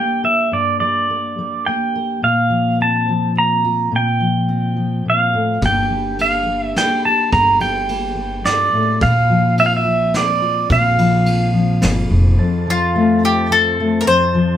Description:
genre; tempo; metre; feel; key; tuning
acoustic folk duo or small band; 106 BPM; 3/4; straight; unclear; A4 = 441 Hz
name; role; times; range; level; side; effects
pedal steel guitar; second line; 0.0-12.1 s; D5 to Bb5; -16 LUFS; right 2 dB; none
fingerpicked steel-string acoustic guitar; accompaniment; 0.0-14.6 s; F2 to Bb4; -19 LUFS; left 2 dB; none
upright bass; bass; 5.6-12.4 s; F1 to Bb1; -19 LUFS; equal; none
soft brush drum kit; drums; 5.6-12.0 s; kick drum, ride cymbal, snare drum; -26 LUFS; equal; none
mellow tonewheel organ; sustained chords; 12.4-14.6 s; F4 to A5; -28 LUFS; right 1 dB; slow rotary speaker
bowl-back mandolin; melody; 12.7-14.6 s; F4 to C5; -15 LUFS; left 2 dB; none
room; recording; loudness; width
wet studio reverb, RT60 0.5 s; band playing live in one room; -14 LUFS; side -10 dB against mid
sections
0.0-12.4 A section; 12.4-14.6 B section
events
pedal steel guitar solo 0.0-12.4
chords
0.0 Gm; 2.2 Bbsus2; 5.6 Gm; 9.0 Bbsus2; 12.4 F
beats
| 0.52 1.09 1.66 | 2.22 2.79 3.36 | 3.92 4.49 5.06 | 5.62 6.19 6.76 | 7.32 7.89 8.45 | 9.02 9.58 10.14 | 10.71 11.27 11.83 | 12.40 12.96 13.52 | 14.08

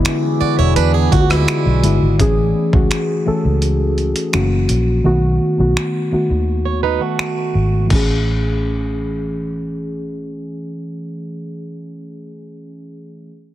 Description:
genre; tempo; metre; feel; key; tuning
contemporary R&B; 84 BPM; 4/4; straight; A major; A4 = 440 Hz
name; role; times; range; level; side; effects
muted felt-like synth keys; accompaniment; 0.0-13.3 s; D3 to A4; -19 LUFS; left 1 dB; chorus, low-pass filter
deep dark ambient pad; sustained chords; 0.0-2.2 s; E3 to D5; -26 LUFS; right 2 dB; chorus, built-in reverb
vintage muted fingered electric bass; bass; 0.0-11.3 s; E1 to E2; -17 LUFS; equal; none
dusty soul sampler-style drum kit; drums; 0.0-8.1 s; crash cymbal, finger snaps, hi-hat, kick drum, rim click; -20 LUFS; equal; none
picked plugged-in swing-style acoustic guitar; arpeggios; 0.4-2.2, 6.7-7.9 s; G#3 to D5; -22 LUFS; right 12 dB; low-pass filter, ping-pong delay
room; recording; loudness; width
light reverb; heavily compressed radio sound, multiband compression; -14 LUFS; side -13 dB against mid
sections
0.0-2.2 A section; 2.2-7.9 B section; 7.9-10.8 C section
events
filter sweep 2.2-7.9; kick muted 5.0-7.9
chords
0.0 E7; 2.2 Amaj7; 4.3 F#7; 5.0 B7; 7.9 Amaj7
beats
0.05 0.76 1.48 | 2.19 2.91 3.62 4.33 | 5.05 5.76 6.48 7.19 | 7.91 8.62 9.34 10.05

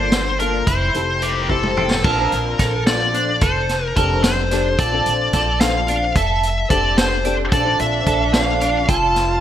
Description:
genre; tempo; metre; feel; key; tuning
progressive instrumental, band music in an uneven meter; 219 BPM (eighths); 5/8; straight; unclear; A4 = 439 Hz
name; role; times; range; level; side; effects
high-gain lead guitar; melody; 0.0-9.4 s; G4 to A5; -20 LUFS; left 2 dB; distortion, ping-pong delay
warm grand piano; accompaniment; 0.0-8.9 s; Bb3 to G5; -25 LUFS; left 5 dB; ensemble chorus
electric guitar at the edge of break-up; arpeggios; 0.0-9.2 s; C4 to A5; -24 LUFS; right 6 dB; ensemble chorus, ping-pong delay
upright bass; bass; 0.0-9.4 s; F1 to Bb1; -23 LUFS; equal; none
vintage drum kit; drums; 0.1-9.3 s; crash cymbal, hi-hat, kick drum, snare drum, toms; -21 LUFS; equal; gated reverb
warm alto saxophone; second line; 7.5-9.4 s; D4 to F4; -23 LUFS; right 4 dB; none
room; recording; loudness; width
light reverb, studio ambience; bright 1980s-style digital production; -15 LUFS; side -10 dB against mid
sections
0.0-2.0 A section; 2.0-9.4 B section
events
grand piano fill 1.2-2.0; drum fill 1.5-2.0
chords
0.0 Gm7; 0.7 Fmaj7; 2.0 Bbmaj7; 3.4 F6; 4.8 Bbmaj7; 6.2 F6; 7.5 Bbmaj7; 8.9 F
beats
0.13 0.40 | 0.68 0.95 1.23 1.50 1.78 | 2.05 2.32 2.60 2.87 3.15 | 3.42 3.69 3.97 4.24 4.51 | 4.79 5.06 5.34 5.61 5.88 | 6.16 6.43 6.70 6.98 7.25 | 7.52 7.80 8.07 8.34 8.62 | 8.89 9.16

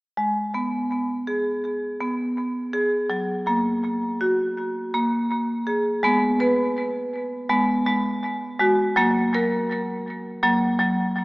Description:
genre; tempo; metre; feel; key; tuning
world meditative; 82 BPM; 4/4; straight; G# minor; A4 = 440 Hz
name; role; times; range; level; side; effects
marimba with hard mallets; arpeggios; 0.2-11.2 s; F#3 to B4; -21 LUFS; equal; tape echo
room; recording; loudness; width
wet church reverb, RT60 2.5 s; small speaker sound; -21 LUFS; side -24 dB against mid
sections
0.2-6.0 A section; 6.0-11.2 B section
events
none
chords
0.2 G#m; 3.1 F#; 6.0 G#m; 9.0 F#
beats
| 0.17 0.90 1.63 2.37 | 3.10 3.83 4.56 5.29 | 6.03 6.76 7.50 8.23 | 8.96 9.69 10.43 11.16

